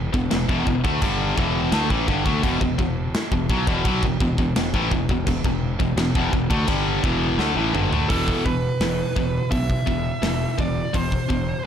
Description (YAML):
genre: heavy metal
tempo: 85 BPM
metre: 4/4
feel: straight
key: E minor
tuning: A4 = 445 Hz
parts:
  - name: tight distorted guitar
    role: riff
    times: 0.0-11.6 s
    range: E2 to A3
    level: -23 LUFS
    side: left 1 dB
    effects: distortion
  - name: fuzz fingered electric bass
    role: bass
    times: 0.0-11.5 s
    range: E1 to D2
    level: -26 LUFS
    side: equal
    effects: overdrive
  - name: tight metal drum kit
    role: drums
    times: 0.1-11.5 s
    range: crash cymbal, hi-hat, kick drum, snare drum, toms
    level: -25 LUFS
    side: equal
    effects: none
  - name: nasal lead guitar with a parked wah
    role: melody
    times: 8.1-11.6 s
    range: A4 to E5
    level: -28 LUFS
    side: right 4 dB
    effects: overdrive
room: little or no reverb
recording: dark, warm production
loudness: -19 LUFS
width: side -8 dB against mid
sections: 0.0-8.1 A section; 8.1-11.7 B section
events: drum fill 7.4-8.1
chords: 0.0 Em; 8.1 E5